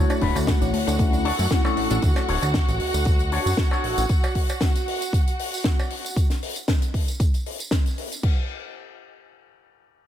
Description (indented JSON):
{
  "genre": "nu-disco, nu disco",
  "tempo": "116 BPM",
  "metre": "4/4",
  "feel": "swing 53% on 16ths",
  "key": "unclear",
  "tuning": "A4 = 441 Hz",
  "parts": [
    { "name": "mellow tine electric piano", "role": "accompaniment", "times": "0.0-2.0 s", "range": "A3 to C#5", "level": "-27 LUFS", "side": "left 3 dB", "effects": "phaser, sidechain pumping, ping-pong delay" },
    { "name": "muted studio string section", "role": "sustained chords", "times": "0.0-6.2 s", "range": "F#4 to F#5", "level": "-29 LUFS", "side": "right 2 dB", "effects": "sidechain pumping" },
    { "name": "electric guitar with an envelope filter", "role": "riff", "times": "0.0-4.0 s", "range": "D4 to C#5", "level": "-30 LUFS", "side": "left 4 dB", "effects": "lush chorus, ping-pong delay" },
    { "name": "fat analog bass", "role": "bass", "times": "0.0-4.1 s", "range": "D1 to F#2", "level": "-25 LUFS", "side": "equal", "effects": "none" },
    { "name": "wide unison pluck", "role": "arpeggios", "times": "0.1-2.0 s", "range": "A3 to D4", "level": "-32 LUFS", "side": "left 3 dB", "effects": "cassette tape, sidechain pumping, ping-pong delay" },
    { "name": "tight funk drum kit", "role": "drums", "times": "0.1-8.3 s", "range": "crash cymbal, hi-hat, snare drum, tambourine", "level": "-30 LUFS", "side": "left 2 dB", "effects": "none" },
    { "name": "cowbell", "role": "percussion", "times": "0.1-5.9 s", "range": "none", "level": "-36 LUFS", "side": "right 3 dB", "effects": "none" },
    { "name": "electronic kick drum", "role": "drums", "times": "0.2-8.3 s", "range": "none", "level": "-21 LUFS", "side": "equal", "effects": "none" }
  ],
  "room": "small room ambience",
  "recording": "none",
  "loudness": "-20 LUFS",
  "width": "side -11 dB against mid",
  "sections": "0.0-8.2 A section; 8.2-10.1 B section",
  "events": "drop 0.0-8.2",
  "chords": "0.0 Dmaj7; 4.1 N.C.",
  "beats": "0.48 0.99 1.51 | 2.03 2.54 3.06 3.58 | 4.10 4.61 5.13 5.65 | 6.17 6.68 7.20 7.72 | 8.23"
}